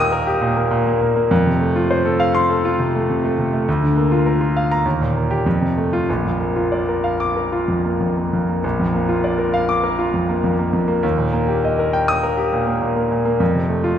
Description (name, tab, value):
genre	classical, virtuoso piano study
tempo	101 BPM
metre	4/4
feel	rubato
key	Bb major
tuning	A4 = 440 Hz
part	clear concert grand piano	solo	0.0-14.0 s	Bb1 to Eb6	-16 LUFS	equal	none
room	wet concert hall reverb, RT60 2.2 s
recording	recorded in a church or concert hall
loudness	-16 LUFS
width	side -9 dB against mid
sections	0.0-8.6 A section; 8.6-14.0 A section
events	none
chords	0.0 Eb; 1.3 F; 3.7 Bb/D; 4.8 Eb; 5.5 F; 6.1 Bb; 11.0 Eb; 13.4 F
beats	0.12 0.71 | 1.30 1.90 2.49 3.08 | 3.67 4.25 4.85 5.45 | 6.08 6.72 7.37 8.00 | 8.64 9.24 9.84 10.43 | 11.03 11.64 12.23 12.82 | 13.40 13.98